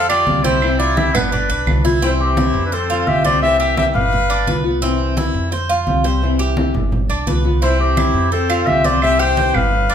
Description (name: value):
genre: latin, Cuban son and guajira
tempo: 171 BPM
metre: 4/4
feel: straight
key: C major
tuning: A4 = 440 Hz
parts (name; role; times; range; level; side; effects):
- warm clarinet; melody; 0.0-4.6, 7.6-9.9 s; G4 to G5; -18 LUFS; equal; none
- brilliant trumpet; second line; 0.0-4.6, 7.6-9.9 s; C4 to C5; -24 LUFS; left 5 dB; none
- Cuban tres; arpeggios; 0.0-9.9 s; B3 to C5; -22 LUFS; right 3 dB; none
- upright bass; bass; 0.0-9.9 s; G1 to F2; -20 LUFS; equal; none
- claves; percussion; 0.1-1.8, 8.0-9.7 s; none; -28 LUFS; right 7 dB; none
- congas; percussion; 0.1-9.9 s; none; -23 LUFS; right 1 dB; none
- nylon-string guitar; accompaniment; 0.3-9.8 s; C3 to G4; -22 LUFS; left 5 dB; none
room: moderate large studio reverb, RT60 1.1 s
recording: band playing live in one room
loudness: -14 LUFS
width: side -8 dB against mid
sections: 0.0-2.0 A section; 2.0-9.9 B section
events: none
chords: 0.0 Fsus2; 0.6 C; 1.3 G7; 2.0 C; 2.7 Fadd9; 3.4 C; 4.1 G7; 4.8 C; 5.5 Fsus2; 6.2 C; 6.9 G7; 7.6 C; 8.3 Fadd9; 9.0 C